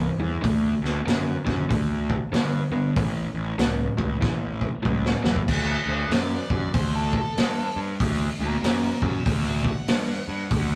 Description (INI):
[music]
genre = blues rock power trio and southern rock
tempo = 95 BPM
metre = 4/4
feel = swing 62% on 8ths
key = D major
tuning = A4 = 442 Hz
[part]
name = cranked stack guitar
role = riff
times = 0.0-5.4 s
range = G2 to B3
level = -29 LUFS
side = equal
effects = overdrive
[part]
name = fuzz picked electric bass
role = bass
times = 0.0-10.8 s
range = A1 to G2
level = -30 LUFS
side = equal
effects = overdrive
[part]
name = vintage drum kit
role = drums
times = 0.4-10.7 s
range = crash cymbal, hi-hat, kick drum, snare drum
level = -28 LUFS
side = equal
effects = none
[part]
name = octave-fuzz lead guitar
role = melody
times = 5.9-10.8 s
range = F4 to F#5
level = -33 LUFS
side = equal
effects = distortion
[sound]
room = moderate studio reverb, RT60 0.6 s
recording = rough rehearsal-room recording, tube saturation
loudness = -25 LUFS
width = mono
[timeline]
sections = 0.0-5.5 A section; 5.5-10.8 B section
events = drum fill 4.2-5.5; lead electric guitar solo 5.5-10.8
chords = 0.4 D; 3.0 A; 5.5 D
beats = | 0.44 1.07 1.70 2.33 | 2.96 3.60 4.22 4.85 | 5.48 6.11 6.74 7.37 | 7.99 8.62 9.25 9.88 | 10.51